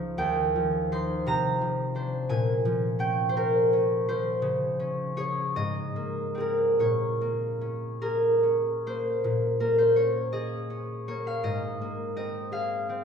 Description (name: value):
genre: classical, solo harp piece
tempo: 47-58 BPM (dotted quarters)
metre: 6/8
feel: rubato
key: Bb dorian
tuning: A4 = 435 Hz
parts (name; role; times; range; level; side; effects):
- concert harp; solo; 0.0-13.0 s; Db2 to C6; -24 LUFS; equal; none
room: wet recital hall reverb, RT60 1.6 s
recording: recorded in a church or concert hall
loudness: -24 LUFS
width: side -6 dB against mid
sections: 0.0-9.2 A section; 9.2-13.0 A section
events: none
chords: 0.2 Eb69; 1.3 Cm11; 2.3 Bbmadd9; 4.4 Dbmaj7; 5.5 Abadd9; 6.8 Bbm7; 11.4 Abadd9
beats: | 0.17 1.27 | 2.31 3.36 | 4.42 5.55 | 6.78 8.01 | 9.22 10.32 | 11.43 12.50